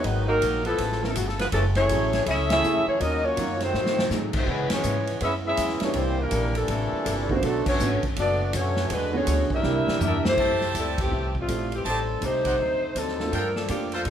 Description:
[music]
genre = jazz, big band swing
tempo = 163 BPM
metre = 4/4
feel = swing 63% on 8ths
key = F major from 10.4 s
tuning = A4 = 439 Hz
[part]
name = mellow saxophone section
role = melody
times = 0.0-14.1 s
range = E3 to E5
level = -26 LUFS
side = left 1 dB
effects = none
[part]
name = bright trombone section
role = second line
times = 0.0-10.3 s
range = Bb2 to E4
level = -30 LUFS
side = right 3 dB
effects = none
[part]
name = archtop guitar, miked and amplified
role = accompaniment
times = 0.0-14.1 s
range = G#2 to C#5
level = -37 LUFS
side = left 3 dB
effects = none
[part]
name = warm upright piano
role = accompaniment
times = 0.0-13.9 s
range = D3 to A4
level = -31 LUFS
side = right 5 dB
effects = none
[part]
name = upright bass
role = bass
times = 0.0-14.1 s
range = F#1 to C#3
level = -29 LUFS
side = equal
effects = none
[part]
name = swinging big-band drum kit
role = drums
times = 0.0-14.1 s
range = crash cymbal, hi-hat, kick drum, ride cymbal, snare drum, toms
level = -31 LUFS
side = equal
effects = none
[part]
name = brilliant trumpet section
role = stabs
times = 10.4-14.0 s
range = Eb4 to A5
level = -31 LUFS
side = right 1 dB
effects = none
[sound]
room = light reverb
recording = band playing live in one room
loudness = -22 LUFS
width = side -9 dB against mid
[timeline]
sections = 0.0-10.4 A section; 10.4-14.1 B section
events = band accent 2.5, 4.7, 7.6, 10.9; drum fill 3.7-4.1, 9.6-10.4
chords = 0.0 G#m7; 0.8 C#7alt; 1.5 F#m9; 3.0 D#m9; 3.7 G#7b9; 4.5 C#m7; 6.0 C13; 7.4 Bm7; 8.9 E13; 9.6 C9; 10.4 Fmaj9; 11.9 Am7b5; 12.6 D7b9; 13.3 Gm9

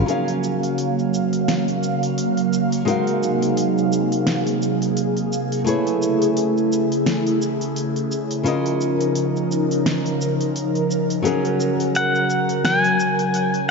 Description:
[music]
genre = sunset chillout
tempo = 86 BPM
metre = 4/4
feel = swing 57% on 16ths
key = Gb lydian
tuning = A4 = 441 Hz
[part]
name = flamenco guitar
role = accompaniment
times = 0.0-13.7 s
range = Db3 to Gb5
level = -23 LUFS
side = equal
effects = auto-pan, digital delay
[part]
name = airy breathy pad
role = sustained chords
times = 0.0-13.7 s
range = C3 to F5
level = -21 LUFS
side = right 1 dB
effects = chorus, phaser
[part]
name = smooth R&B drum kit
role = drums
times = 0.1-13.7 s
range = cabasa, hi-hat, snare drum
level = -27 LUFS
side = equal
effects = none
[part]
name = pedal steel guitar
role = melody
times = 12.0-13.7 s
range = Gb5 to Ab5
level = -20 LUFS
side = left 2 dB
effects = digital delay
[sound]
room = wet lush hall reverb, RT60 2.3 s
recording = dark, warm production, nothing above 7.6 kHz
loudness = -18 LUFS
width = side -4 dB against mid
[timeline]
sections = 0.1-13.7 A section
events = none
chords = 0.1 Gbmaj7; 2.9 Ab13; 5.7 Amaj7; 8.5 Db69; 11.2 Gb

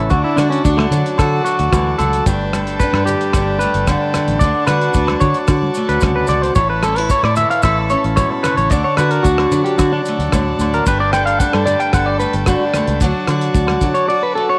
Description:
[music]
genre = highlife guitar band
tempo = 112 BPM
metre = 4/4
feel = straight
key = D major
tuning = A4 = 439 Hz
[part]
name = picked steel-string acoustic guitar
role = accompaniment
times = 0.0-14.6 s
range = G2 to A4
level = -22 LUFS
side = equal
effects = cassette tape
[part]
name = combo organ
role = sustained chords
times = 0.0-14.6 s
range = B4 to B5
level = -28 LUFS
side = equal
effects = cassette tape
[part]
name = clean electric guitar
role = arpeggios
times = 0.0-14.6 s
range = A3 to G5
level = -20 LUFS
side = equal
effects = cassette tape, tape echo
[part]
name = fingered electric bass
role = bass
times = 0.0-13.9 s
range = G1 to D3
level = -22 LUFS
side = equal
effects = none
[part]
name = cloth-damped thuddy drum kit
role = drums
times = 0.1-14.1 s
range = hi-hat, kick drum, rim click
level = -22 LUFS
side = equal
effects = cassette tape
[part]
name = maracas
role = percussion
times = 0.1-13.9 s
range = none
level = -36 LUFS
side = equal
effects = none
[part]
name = agogo bells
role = percussion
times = 0.4-13.8 s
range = none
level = -32 LUFS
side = equal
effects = none
[part]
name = congas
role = percussion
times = 0.4-14.0 s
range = none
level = -32 LUFS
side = equal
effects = none
[sound]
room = light reverb, studio ambience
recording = home recording on cassette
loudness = -16 LUFS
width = mono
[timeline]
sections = 0.0-14.6 A section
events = clean electric guitar solo 0.0-14.6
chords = 0.1 D; 2.3 Gadd9; 4.4 D; 6.6 Aadd9; 8.7 D; 10.9 Gadd9; 13.0 D

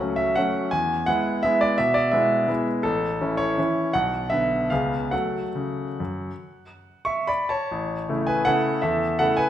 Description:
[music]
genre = classical, piano waltz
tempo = 134-182 BPM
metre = 3/4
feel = rubato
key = F# minor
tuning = A4 = 440 Hz
[part]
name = bright grand piano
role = solo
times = 0.0-9.5 s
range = A1 to C#6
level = -21 LUFS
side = equal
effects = none
[sound]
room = wet recital hall reverb, RT60 1.5 s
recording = minimal, uncompressed stereo recording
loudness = -21 LUFS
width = side -11 dB against mid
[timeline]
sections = 0.0-7.7 A section; 7.7-9.5 B section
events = none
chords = 0.0 F#m; 0.7 E; 2.9 A; 3.9 Bm; 4.7 C#7; 5.1 F#m; 7.7 A

